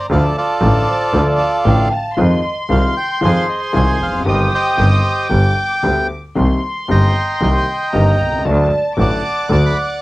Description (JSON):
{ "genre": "tango", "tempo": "115 BPM", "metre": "4/4", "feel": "rubato", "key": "C minor", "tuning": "A4 = 439 Hz", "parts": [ { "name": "bandoneon", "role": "melody", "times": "0.0-10.0 s", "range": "F4 to C6", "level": "-18 LUFS", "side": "right 1 dB", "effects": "cassette tape" }, { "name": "warm studio violin section", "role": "second line", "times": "0.0-10.0 s", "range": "F5 to Eb6", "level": "-24 LUFS", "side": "left 2 dB", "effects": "cassette tape" }, { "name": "dark grand piano", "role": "accompaniment", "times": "0.1-9.7 s", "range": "G1 to G4", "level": "-19 LUFS", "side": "left 2 dB", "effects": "cassette tape" }, { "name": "clear double bass", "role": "bass", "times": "0.1-9.7 s", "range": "F1 to F2", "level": "-16 LUFS", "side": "equal", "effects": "none" }, { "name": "vibraphone with hard mallets", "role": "second line", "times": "0.9-2.5, 7.9-8.8 s", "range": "C5 to G5", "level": "-20 LUFS", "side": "right 2 dB", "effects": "cassette tape" } ], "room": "little or no reverb", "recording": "home recording on cassette", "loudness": "-13 LUFS", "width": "side -19 dB against mid", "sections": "0.0-10.0 A section", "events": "none", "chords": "0.1 Dm; 2.2 Fm7; 4.3 Cm/G; 5.3 G; 6.4 Cm7; 8.5 D" }